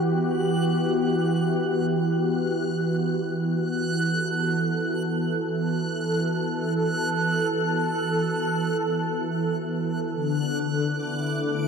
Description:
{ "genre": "ambient", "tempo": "free time", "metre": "none", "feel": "none", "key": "E minor", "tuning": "A4 = 440 Hz", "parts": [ { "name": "warm analog pad", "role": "sustained chords", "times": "0.0-11.7 s", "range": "D3 to A4", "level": "-23 LUFS", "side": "equal", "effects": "chorus" }, { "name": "backwards swelling texture", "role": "texture", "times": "0.0-11.7 s", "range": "D6 to F#6", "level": "-32 LUFS", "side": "right 1 dB", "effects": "built-in reverb" } ], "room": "wet huge ambient reverb, RT60 8.4 s", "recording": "dark, warm production", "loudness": "-23 LUFS", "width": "side -6 dB against mid", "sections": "0.0-11.7 A section", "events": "none", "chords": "0.0 Emadd9; 10.1 D5", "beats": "free time" }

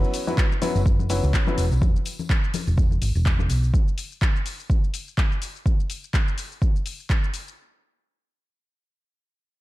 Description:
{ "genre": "piano house", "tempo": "125 BPM", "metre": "4/4", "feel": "swing 56% on 16ths", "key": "unclear", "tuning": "A4 = 440 Hz", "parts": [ { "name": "bright upright piano", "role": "riff", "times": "0.0-1.6 s", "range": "F#3 to B4", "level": "-27 LUFS", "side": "left 2 dB", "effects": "sidechain pumping, low-pass filter, ping-pong delay" }, { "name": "garage drum kit", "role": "drums", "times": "0.0-7.6 s", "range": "handclaps, hi-hat, shaker", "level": "-31 LUFS", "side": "left 1 dB", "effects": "small room ambience" }, { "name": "tambourine and congas", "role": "percussion", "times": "0.1-3.7 s", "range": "none", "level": "-33 LUFS", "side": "left 6 dB", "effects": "none" }, { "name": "electronic kick drum", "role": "drums", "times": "0.4-7.2 s", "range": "none", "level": "-21 LUFS", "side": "equal", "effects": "overdrive, small room ambience" }, { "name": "hollow-body short-scale fingered electric bass", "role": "bass", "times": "0.8-3.7 s", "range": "E1 to C#2", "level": "-22 LUFS", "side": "equal", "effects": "sidechain pumping" } ], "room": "digital ambience", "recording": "dark, warm production", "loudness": "-20 LUFS", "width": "side -18 dB against mid", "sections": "0.0-7.6 A section; 7.6-9.6 B section", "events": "none", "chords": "0.0 F#7sus4; 1.8 N.C.", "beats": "0.38 0.86 1.34 | 1.82 2.30 2.78 3.26 | 3.74 4.22 4.70 5.18 | 5.66 6.14 6.62 7.10" }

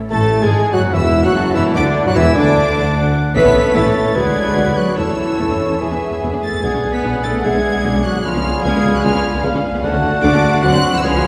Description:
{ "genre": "classical, dramatic, fast romantic movement for symphony orchestra", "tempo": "148 BPM", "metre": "4/4", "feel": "rubato", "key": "A major", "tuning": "A4 = 439 Hz", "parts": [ { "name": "rich symphonic violin section", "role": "melody", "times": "0.1-11.3 s", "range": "D6 to B6", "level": "-28 LUFS", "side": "equal", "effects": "none" }, { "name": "clear clarinet", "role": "second line", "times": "0.1-11.3 s", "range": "D4 to B4", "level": "-27 LUFS", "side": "equal", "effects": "none" }, { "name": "flute section", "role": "second line", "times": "0.1-11.3 s", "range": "D5 to C6", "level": "-30 LUFS", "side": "equal", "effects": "none" }, { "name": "warm symphonic violin section", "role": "second line", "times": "0.1-11.3 s", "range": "D4 to F#5", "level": "-28 LUFS", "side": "equal", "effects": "none" }, { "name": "dark bassoon", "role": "accompaniment", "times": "0.1-11.3 s", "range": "D3 to D4", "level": "-27 LUFS", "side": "equal", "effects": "none" }, { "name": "warm symphonic viola section", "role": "accompaniment", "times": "0.1-11.2 s", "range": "D3 to G#4", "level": "-26 LUFS", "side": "equal", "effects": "none" }, { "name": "dark French horn section", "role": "sustained chords", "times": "0.1-11.3 s", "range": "D4 to B4", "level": "-25 LUFS", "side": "equal", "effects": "none" }, { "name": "warm trombone section", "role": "sustained chords", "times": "0.1-11.3 s", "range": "C#3 to D4", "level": "-29 LUFS", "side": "equal", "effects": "none" }, { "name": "mellow trumpet", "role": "stabs", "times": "0.1-11.3 s", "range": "F#4 to A5", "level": "-25 LUFS", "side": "equal", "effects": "none" }, { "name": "bright symphonic double bass section", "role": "bass", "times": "0.1-11.2 s", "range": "A1 to A2", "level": "-24 LUFS", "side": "equal", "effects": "none" }, { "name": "mellow tuba", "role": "bass", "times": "0.1-11.1 s", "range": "E1 to D2", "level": "-25 LUFS", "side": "equal", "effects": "none" }, { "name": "rich symphonic cello section", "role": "bass", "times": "0.1-11.3 s", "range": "D3 to B3", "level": "-25 LUFS", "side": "equal", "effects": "none" }, { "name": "warm cor anglais", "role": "second line", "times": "0.9-11.3 s", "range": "B4 to A5", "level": "-27 LUFS", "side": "equal", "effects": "none" } ], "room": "wet scoring stage reverb, RT60 2.1 s", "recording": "heard from further back in the room", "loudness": "-15 LUFS", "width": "mono", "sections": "0.1-11.3 A section", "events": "none", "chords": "0.1 A5; 1.8 D; 3.4 A; 4.2 Bm/D; 5.0 A/E; 5.8 E; 6.6 G#m7b5/B; 8.2 C#7b9; 9.8 D; 10.6 D7", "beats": "| 0.11 0.53 0.94 1.35 | 1.76 2.16 2.56 2.96 | 3.35 3.75 4.16 4.57 | 4.97 5.38 5.80 6.22 | 6.63 7.04 7.44 7.84 | 8.24 8.64 9.04 9.43 | 9.83 10.22 10.63 11.04" }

